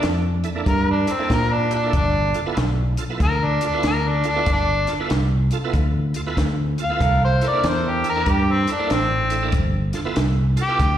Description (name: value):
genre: electric blues shuffle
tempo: 95 BPM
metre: 4/4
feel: swing 64% on 8ths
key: unclear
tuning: A4 = 440 Hz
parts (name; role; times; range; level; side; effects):
- mellow harmonica; melody; 0.0-11.0 s; C4 to F5; -22 LUFS; left 1 dB; overdrive, slapback echo
- bright tonewheel organ; accompaniment; 0.0-10.8 s; Bb3 to A4; -29 LUFS; right 6 dB; slow rotary speaker, chorus vibrato, slapback echo
- fingered electric bass; bass; 0.0-11.0 s; G1 to Bb2; -21 LUFS; equal; none
- compact cocktail drum kit; drums; 0.0-11.0 s; hi-hat, kick drum, snare drum; -25 LUFS; equal; none
- bright horn section; stabs; 7.0-8.1 s; D4 to Bb4; -31 LUFS; right 2 dB; slapback echo, analog delay
room: small room reverb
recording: live gig heard through the venue's PA, recital hall reverb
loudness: -18 LUFS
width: side -10 dB against mid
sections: 0.0-11.0 A section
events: harmonica solo 0.0-11.0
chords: 0.0 C13 (rootless); 1.9 G13; 7.0 C13; 9.5 G13